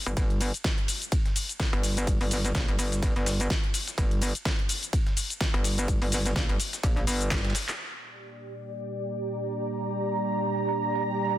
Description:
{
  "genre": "bass house",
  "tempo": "126 BPM",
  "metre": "4/4",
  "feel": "swing 57% on 16ths",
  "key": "G minor",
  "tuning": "A4 = 442 Hz",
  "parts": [
    { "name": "metallic wobble bass", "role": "bass", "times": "0.1-7.5 s", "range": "G1 to Bb1", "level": "-27 LUFS", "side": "equal", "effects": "chorus, tube saturation, sidechain pumping" },
    { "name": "big-room dance drum kit", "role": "drums", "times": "0.1-7.8 s", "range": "handclaps, hi-hat, shaker, snare drum", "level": "-31 LUFS", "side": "left 2 dB", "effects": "none" },
    { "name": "dusty soul sampler-style drum kit", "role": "drums", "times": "0.2-7.8 s", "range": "ride cymbal, snare drum", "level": "-40 LUFS", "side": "right 3 dB", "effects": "high-pass filter on cymbals, high-pass filter on snare, high-pass filter on hats" },
    { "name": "electronic kick drum", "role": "drums", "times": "0.2-7.4 s", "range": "none", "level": "-27 LUFS", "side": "equal", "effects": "none" },
    { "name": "dark analog pad", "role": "sustained chords", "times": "8.3-11.4 s", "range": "Bb3 to D5", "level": "-31 LUFS", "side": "right 3 dB", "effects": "chorus, sidechain pumping" },
    { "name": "ethereal airy pad", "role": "texture", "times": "8.4-11.4 s", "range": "G4 to Bb5", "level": "-30 LUFS", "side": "right 1 dB", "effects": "ensemble chorus, built-in reverb, sidechain pumping" }
  ],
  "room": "light reverb, digital ambience",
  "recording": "dense, heavily limited modern master",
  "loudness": "-25 LUFS",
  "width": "side -13 dB against mid",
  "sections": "0.0-7.8 A section; 7.8-11.4 B section",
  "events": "drum fill 7.3-7.8",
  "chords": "0.0 N.C.; 7.8 Gm",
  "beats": "| 0.17 0.64 1.12 1.60 | 2.07 2.55 3.02 3.50 | 3.98 4.45 4.93 5.41 | 5.88 6.36 6.83 7.31 | 7.79 8.26 8.74 9.22 | 9.69 10.17 10.64 11.12"
}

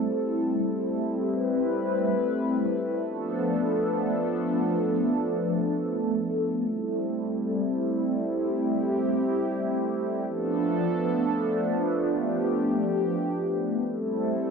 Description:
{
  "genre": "hip hop",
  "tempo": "free time",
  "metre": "none",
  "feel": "none",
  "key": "A minor",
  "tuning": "A4 = 440 Hz",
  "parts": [
    { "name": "warm analog pad", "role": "solo", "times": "0.0-14.5 s", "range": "F3 to B4", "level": "-24 LUFS", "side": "equal", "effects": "chorus, phaser" }
  ],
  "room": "wet booth ambience, RT60 0.2 s",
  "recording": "none",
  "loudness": "-24 LUFS",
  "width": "side -5 dB against mid",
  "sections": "0.0-13.9 A section",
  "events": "none",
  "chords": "0.0 Am7; 3.1 Bm7b5; 6.7 Am7; 10.3 Bm7b5; 13.9 Am7",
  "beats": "free time"
}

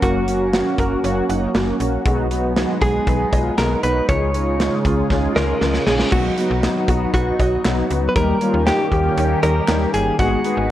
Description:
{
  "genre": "synth-pop",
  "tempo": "118 BPM",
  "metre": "4/4",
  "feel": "straight",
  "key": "unclear",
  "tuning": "A4 = 440 Hz",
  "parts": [
    { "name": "direct-recorded clean electric guitar", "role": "melody", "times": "0.0-10.7 s", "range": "Gb4 to Db5", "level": "-22 LUFS", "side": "equal", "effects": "spring reverb" },
    { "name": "mellow synth brass", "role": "accompaniment", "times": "0.0-10.7 s", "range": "Gb3 to Bb4", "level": "-22 LUFS", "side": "equal", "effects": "chorus" },
    { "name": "phased analog pad", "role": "sustained chords", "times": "0.0-10.7 s", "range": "Db3 to Cb5", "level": "-25 LUFS", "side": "right 1 dB", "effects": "phaser, chorus" },
    { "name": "felt-muted upright piano", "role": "arpeggios", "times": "0.0-10.6 s", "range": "F3 to Gb5", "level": "-28 LUFS", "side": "right 1 dB", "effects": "digital delay" },
    { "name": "slap-like FM bass", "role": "bass", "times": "0.0-10.7 s", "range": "Gb1 to Eb2", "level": "-22 LUFS", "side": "equal", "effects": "none" },
    { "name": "modern studio drum kit", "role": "drums", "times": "0.0-10.6 s", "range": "crash cymbal, handclaps, hi-hat, kick drum, snare drum", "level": "-22 LUFS", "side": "equal", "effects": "none" },
    { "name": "reverse cymbal", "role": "sound effects", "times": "5.3-6.1 s", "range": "none", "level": "-30 LUFS", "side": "left 1 dB", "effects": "none" }
  ],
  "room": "moderate recital hall reverb, RT60 1.5 s, small room ambience",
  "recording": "worn, warbling old tape, cassette tape, warbly pitch drift",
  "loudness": "-16 LUFS",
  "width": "side -13 dB against mid",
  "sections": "0.0-6.1 A section; 6.1-10.7 B section",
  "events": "drum fill 5.1-6.1; reverse cymbal 5.3-6.1",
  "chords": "0.0 Gb; 2.1 B6; 4.1 Dbadd9; 6.1 B; 8.2 Eb7; 10.2 Abm7",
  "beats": "| 0.02 0.53 1.04 1.55 | 2.06 2.56 3.07 3.58 | 4.09 4.60 5.11 5.62 | 6.12 6.63 7.14 7.65 | 8.16 8.67 9.18 9.68 | 10.19 10.70"
}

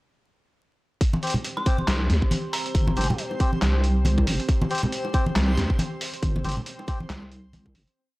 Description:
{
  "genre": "deep dubstep",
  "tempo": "138 BPM",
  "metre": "4/4",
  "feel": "swing 58% on 16ths, half-time",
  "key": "unclear",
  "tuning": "A4 = 441 Hz",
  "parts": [
    { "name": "dark analog pad", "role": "sustained chords", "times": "1.4-7.9 s", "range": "C4 to C5", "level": "-35 LUFS", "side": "equal", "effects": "chorus" },
    { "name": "electronic kick drum", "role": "drums", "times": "1.0-7.7 s", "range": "none", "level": "-22 LUFS", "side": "equal", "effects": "none" },
    { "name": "trip hop sampler-style drum kit", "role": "drums", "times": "1.0-7.9 s", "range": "handclaps, hi-hat, snare drum", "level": "-29 LUFS", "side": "equal", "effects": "none" },
    { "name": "backwards swelling texture", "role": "texture", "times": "2.5-8.0 s", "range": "C4 to C5", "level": "-38 LUFS", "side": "left 1 dB", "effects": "built-in reverb" },
    { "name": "congas and bongos", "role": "percussion", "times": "1.1-7.7 s", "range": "none", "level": "-28 LUFS", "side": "equal", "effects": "none" },
    { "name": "melodica", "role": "stabs", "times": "1.2-7.0 s", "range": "C4 to C5", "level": "-33 LUFS", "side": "left 2 dB", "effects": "dub echo" },
    { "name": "dark detuned synth bell", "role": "melody", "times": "1.6-3.1 s", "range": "Bb5 to C6", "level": "-35 LUFS", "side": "right 1 dB", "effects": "chorus, dub echo" },
    { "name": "deep soft wobble bass", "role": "bass", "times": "1.9-7.9 s", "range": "G1 to Eb2", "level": "-23 LUFS", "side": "equal", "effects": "chorus" }
  ],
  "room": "little or no reverb",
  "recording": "dry, gritty hardware recording, transformer saturation, vinyl crackle",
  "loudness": "-22 LUFS",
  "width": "side -20 dB against mid",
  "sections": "1.0-8.0 drop",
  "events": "drop 1.0-8.0; fade-out 5.6-8.0",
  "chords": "1.0 C5",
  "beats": "| 1.01 1.44 1.88 2.31 | 2.75 3.18 3.62 4.05 | 4.49 4.92 5.36 5.79 | 6.23 6.66 7.10 7.53"
}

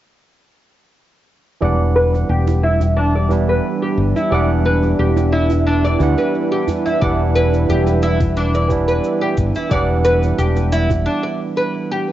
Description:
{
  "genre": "organic downtempo",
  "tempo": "89 BPM",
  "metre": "4/4",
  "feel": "straight",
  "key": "E minor",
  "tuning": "A4 = 437 Hz",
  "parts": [
    { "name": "barky tine electric piano", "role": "accompaniment", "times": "1.6-12.1 s", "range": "E3 to F#5", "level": "-21 LUFS", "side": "right 5 dB", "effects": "vintage 12-bit sampler grit, sidechain pumping, cassette tape, tape echo" },
    { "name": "bowed-like drone", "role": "sustained chords", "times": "2.7-11.1 s", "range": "G3 to B4", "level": "-23 LUFS", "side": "equal", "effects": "built-in reverb, sidechain pumping, cassette tape" },
    { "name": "oud", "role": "arpeggios", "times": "1.6-12.1 s", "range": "D4 to D5", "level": "-20 LUFS", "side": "equal", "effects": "vintage 12-bit sampler grit, low-pass filter, cassette tape, tape echo" },
    { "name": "mellow fretless electric bass", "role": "bass", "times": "1.6-11.1 s", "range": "E1 to D2", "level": "-17 LUFS", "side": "left 1 dB", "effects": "sidechain pumping" },
    { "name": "shaker", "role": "drums", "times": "1.6-11.0 s", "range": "none", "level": "-45 LUFS", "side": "left 1 dB", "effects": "low-pass filter on perc, low-pass filter on room" },
    { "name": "djembe", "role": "percussion", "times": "2.1-11.0 s", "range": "none", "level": "-27 LUFS", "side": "right 6 dB", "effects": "none" },
    { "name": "electronic kick drum", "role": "drums", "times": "7.0-11.0 s", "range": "none", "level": "-22 LUFS", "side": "left 1 dB", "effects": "none" }
  ],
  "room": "moderate spring reverb, RT60 1.5 s",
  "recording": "home recording on cassette, nothing above 7.8 kHz",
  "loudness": "-14 LUFS",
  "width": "side -13 dB against mid",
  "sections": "1.6-12.1 A section",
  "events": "filter sweep on drum 1.6-12.1; filter sweep on oud 1.6-12.1; filter sweep on synth drone 1.6-12.1; break 11.1-12.1",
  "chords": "1.6 Em7",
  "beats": "| 1.62 2.30 2.97 3.65 | 4.32 5.00 5.67 6.34 | 7.02 7.69 8.37 9.04 | 9.71 10.39 11.06 11.74"
}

